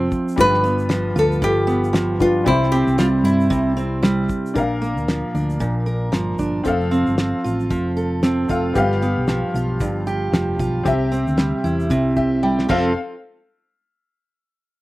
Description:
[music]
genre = acoustic pop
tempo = 114 BPM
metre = 4/4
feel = swing 60% on 16ths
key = F major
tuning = A4 = 443 Hz
[part]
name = nylon-string guitar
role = melody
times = 0.0-3.7 s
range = E4 to B4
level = -20 LUFS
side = equal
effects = none
[part]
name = bright upright piano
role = accompaniment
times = 0.0-13.0 s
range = G3 to G5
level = -25 LUFS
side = left 3 dB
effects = slapback echo
[part]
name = fingerpicked steel-string acoustic guitar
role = accompaniment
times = 0.0-12.9 s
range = G2 to Bb4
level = -21 LUFS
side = right 2 dB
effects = none
[part]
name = hollow-body short-scale fingered electric bass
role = bass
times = 0.0-12.9 s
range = F1 to G2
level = -23 LUFS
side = equal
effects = none
[part]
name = cloth-damped thuddy drum kit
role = drums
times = 0.1-12.8 s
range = crash cymbal, kick drum, shaker, snare drum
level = -23 LUFS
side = equal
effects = none
[sound]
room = little or no reverb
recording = recorded outdoors, with no room sound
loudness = -17 LUFS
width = side -18 dB against mid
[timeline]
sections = 0.0-4.6 A section; 4.6-13.0 B section; 13.0-14.8 C section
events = upright piano fill 11.9-13.0; drum fill 12.4-13.0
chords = 0.4 G7; 2.5 C; 4.6 Bb; 6.7 F; 8.8 G7; 10.9 C; 12.7 F; 13.0 N.C.

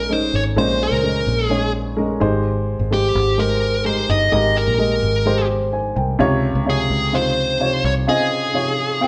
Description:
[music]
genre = piano-driven pop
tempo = 128 BPM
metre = 4/4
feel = straight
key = Ab major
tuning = A4 = 441 Hz
[part]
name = dark smooth lead guitar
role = melody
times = 0.0-9.1 s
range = G4 to Eb5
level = -22 LUFS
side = equal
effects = overdrive
[part]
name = dark upright piano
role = accompaniment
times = 0.0-9.1 s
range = Ab2 to Ab5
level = -23 LUFS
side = equal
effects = none
[part]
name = fingered electric bass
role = bass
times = 0.0-8.1 s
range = G1 to Db2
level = -24 LUFS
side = equal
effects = none
[sound]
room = moderate stone room reverb, RT60 1.0 s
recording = band playing live in one room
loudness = -19 LUFS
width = mono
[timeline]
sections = 0.0-9.1 A section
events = none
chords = 0.0 Bbm7; 2.2 Abmaj7; 6.2 Dbmaj7

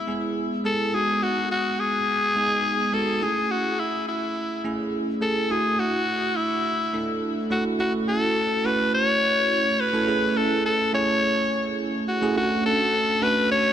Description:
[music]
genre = pop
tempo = 105 BPM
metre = 4/4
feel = straight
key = unclear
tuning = A4 = 440 Hz
[part]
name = raspy alto saxophone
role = melody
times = 0.0-13.7 s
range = E4 to C#5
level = -22 LUFS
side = left 2 dB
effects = ping-pong delay
[part]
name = bell-like tine electric piano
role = accompaniment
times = 0.0-13.7 s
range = G#3 to A4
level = -26 LUFS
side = right 2 dB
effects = phaser
[sound]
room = moderate lush hall reverb, RT60 2.8 s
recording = none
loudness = -21 LUFS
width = side -9 dB against mid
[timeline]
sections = 0.0-7.8 A section; 7.8-13.7 B section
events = none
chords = 0.0 E; 0.9 G#m7; 3.2 Amaj7; 5.5 Dadd9; 7.8 F#m7; 10.1 Amaj7; 12.4 Dmaj7

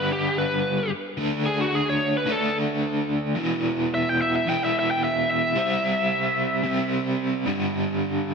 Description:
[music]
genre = rock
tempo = 110 BPM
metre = 4/4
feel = straight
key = unclear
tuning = A4 = 440 Hz
[part]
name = biting lead guitar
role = melody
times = 0.0-6.9 s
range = F#4 to G5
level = -25 LUFS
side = left 1 dB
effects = overdrive
[part]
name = overdriven electric guitar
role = riff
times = 0.0-8.3 s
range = E2 to D4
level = -24 LUFS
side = right 1 dB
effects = tremolo, slapback echo
[sound]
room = moderate lush hall reverb, RT60 2.7 s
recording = big arena sound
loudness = -21 LUFS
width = side -5 dB against mid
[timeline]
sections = 0.0-8.3 A section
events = none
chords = 0.0 G; 1.2 D5; 3.4 E5; 5.6 C; 7.5 G5

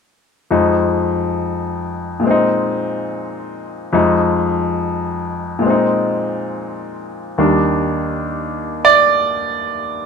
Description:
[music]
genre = solo jazz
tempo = 70 BPM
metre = 4/4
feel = swing 69% on 8ths, rubato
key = Eb major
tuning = A4 = 440 Hz
[part]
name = bright concert grand piano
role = solo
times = 0.5-10.1 s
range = Eb2 to D5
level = -15 LUFS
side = equal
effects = none
[sound]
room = moderate studio reverb, RT60 0.9 s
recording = none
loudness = -15 LUFS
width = side -6 dB against mid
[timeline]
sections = 0.5-7.4 A section; 7.4-10.1 B section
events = none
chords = 0.5 Fm7; 2.2 Bb9sus4; 3.9 Fm7; 5.6 Bb9sus4; 7.4 Ebmaj7

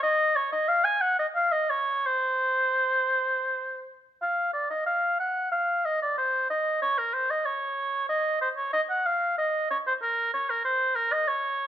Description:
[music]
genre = classical, baroque-style fantasia for unaccompanied oboe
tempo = 80-97 BPM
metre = 3/4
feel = rubato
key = unclear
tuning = A4 = 438 Hz
[part]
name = warm oboe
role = solo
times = 0.0-11.7 s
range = Bb4 to Ab5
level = -24 LUFS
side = equal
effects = none
[sound]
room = moderate stone room reverb, RT60 1.3 s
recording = none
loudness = -24 LUFS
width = side -10 dB against mid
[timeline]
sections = 0.0-4.2 A section; 4.2-11.7 B section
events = none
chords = none

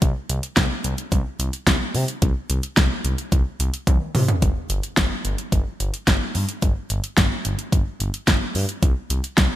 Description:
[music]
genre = synth-pop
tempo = 109 BPM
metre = 4/4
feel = straight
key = unclear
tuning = A4 = 442 Hz
[part]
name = smooth gliding synth bass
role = bass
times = 0.0-9.5 s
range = G1 to C3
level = -24 LUFS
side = equal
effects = none
[part]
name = pop drum kit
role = drums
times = 0.0-9.5 s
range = hi-hat, kick drum, snare drum, toms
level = -20 LUFS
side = equal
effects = overdrive
[sound]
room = light reverb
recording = bright 1980s-style digital production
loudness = -19 LUFS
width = side -14 dB against mid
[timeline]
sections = 0.0-4.4 A section; 4.4-9.6 B section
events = drum fill 3.9-4.4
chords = none

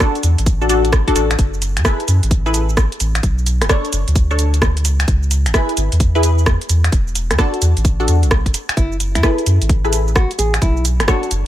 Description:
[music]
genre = UK garage, two-step garage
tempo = 130 BPM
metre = 4/4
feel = swing 65% on 16ths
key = F# minor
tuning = A4 = 439 Hz
[part]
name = punchy chord stab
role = stabs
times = 0.0-11.3 s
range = D4 to C#5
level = -20 LUFS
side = left 2 dB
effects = chorus, phaser, digital delay
[part]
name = electronic kick drum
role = drums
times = 0.0-11.2 s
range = none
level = -16 LUFS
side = equal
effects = none
[part]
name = garage drum kit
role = drums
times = 0.0-11.4 s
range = finger snaps, hi-hat, rim click, shaker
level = -20 LUFS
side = right 1 dB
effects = none
[part]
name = soft dub sub bass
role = bass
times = 0.2-11.4 s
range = D1 to F#2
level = -16 LUFS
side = equal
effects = sidechain pumping
[part]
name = nylon-string guitar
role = melody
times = 8.8-11.3 s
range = E4 to G#4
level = -23 LUFS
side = equal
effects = tape echo
[sound]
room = little or no reverb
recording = none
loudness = -13 LUFS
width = side -13 dB against mid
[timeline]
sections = 0.0-11.5 A section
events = none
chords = 0.0 E9sus4 (rootless); 1.4 F#m11; 3.2 Bm7; 4.8 C#m7; 6.9 E9sus4; 8.8 F#m11; 10.6 Bm7

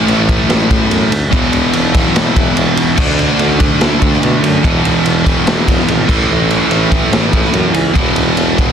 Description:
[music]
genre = hard rock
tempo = 145 BPM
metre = 4/4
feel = straight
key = unclear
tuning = A4 = 440 Hz
[part]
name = distorted electric guitar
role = riff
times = 0.0-8.7 s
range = E2 to D4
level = -17 LUFS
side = equal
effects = overdrive
[part]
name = sludgy distorted guitar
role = riff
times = 0.0-8.7 s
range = E2 to D4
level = -15 LUFS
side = right 1 dB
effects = overdrive
[part]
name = warm tuba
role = bass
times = 0.1-8.7 s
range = E1 to B2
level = -19 LUFS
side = equal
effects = none
[part]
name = raw garage drum kit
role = drums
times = 0.1-8.7 s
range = crash cymbal, kick drum, ride cymbal, snare drum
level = -14 LUFS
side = equal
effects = none
[sound]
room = light reverb, small room ambience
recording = dense, heavily limited modern master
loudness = -10 LUFS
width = side -8 dB against mid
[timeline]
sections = 0.0-8.7 A section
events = none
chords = 0.0 A5; 1.3 E5; 3.0 D5; 4.6 E5; 6.1 A5; 8.0 E5

